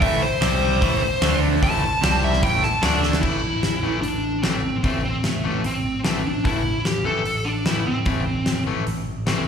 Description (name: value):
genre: hard rock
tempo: 149 BPM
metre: 4/4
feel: straight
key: A minor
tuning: A4 = 439 Hz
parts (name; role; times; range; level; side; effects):
- smooth overdriven lead guitar; melody; 0.0-9.5 s; A3 to A5; -24 LUFS; equal; slapback echo, digital delay
- cranked stack guitar; riff; 0.0-3.2 s; A2 to D4; -25 LUFS; right 9 dB; overdrive, phaser, slapback echo
- overdriven semi-hollow guitar; riff; 0.0-9.4 s; A2 to D4; -28 LUFS; left 9 dB; slapback echo
- overdriven picked electric bass; bass; 0.0-9.5 s; A1 to D2; -26 LUFS; equal; none
- huge arena drum kit; drums; 0.0-9.4 s; crash cymbal, hi-hat, kick drum, snare drum; -24 LUFS; equal; none
room: light reverb, small room ambience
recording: live gig heard through the venue's PA, club reverb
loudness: -19 LUFS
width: side -7 dB against mid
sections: 0.0-3.2 A section; 3.2-9.5 B section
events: lead electric guitar solo 0.0-3.2; drum fill 3.0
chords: 0.0 Am; 0.4 C5; 0.8 Am; 1.2 D5; 1.6 A5; 2.0 C5; 2.4 A5; 2.8 D5; 3.2 A5